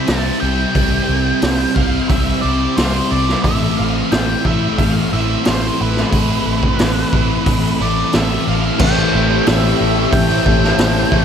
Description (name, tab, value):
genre	rock, shoegaze and dream pop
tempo	89 BPM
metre	4/4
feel	straight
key	A minor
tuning	A4 = 441 Hz
part	octave-fuzz lead guitar	melody	0.0-11.2 s	B4 to A5	-22 LUFS	left 1 dB	distortion, ping-pong delay
part	biting overdriven guitar	riff	0.0-11.2 s	A2 to E4	-20 LUFS	right 11 dB	reverse reverb
part	thick fuzz guitar	riff	0.0-11.2 s	A2 to C4	-20 LUFS	left 11 dB	distortion, analog chorus
part	vintage muted fingered electric bass	bass	0.1-11.2 s	A1 to C2	-20 LUFS	equal	none
part	raw garage drum kit	drums	0.1-11.2 s	crash cymbal, hi-hat, kick drum, snare drum	-19 LUFS	equal	none
part	warm analog pad	sustained chords	8.8-11.2 s	G4 to A5	-23 LUFS	left 1 dB	chorus
part	overdriven electric guitar	riff	8.8-11.2 s	A2 to A3	-20 LUFS	left 1 dB	spring reverb
room	moderate plate reverb, RT60 2.2 s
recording	dreamy mix soaked in reverb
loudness	-13 LUFS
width	side -8 dB against mid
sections	0.0-8.8 A section; 8.8-11.2 B section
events	none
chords	0.0 C; 3.4 Amadd9; 8.8 Am7